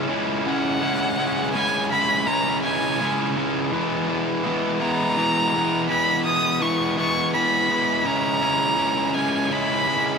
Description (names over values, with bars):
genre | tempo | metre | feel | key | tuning
rock | 55 BPM (dotted quarters) | 6/8 | straight | unclear | A4 = 440 Hz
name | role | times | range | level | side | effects
fuzz guitar | riff | 0.0-10.2 s | C#3 to E4 | -22 LUFS | equal | distortion
rich violin | melody | 0.5-10.2 s | F#5 to D#6 | -23 LUFS | right 1 dB | tape echo
room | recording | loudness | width
light reverb, studio ambience | none | -19 LUFS | side -5 dB against mid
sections
0.0-10.2 A section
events
none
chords
0.0 C#m; 3.7 E; 8.1 C#m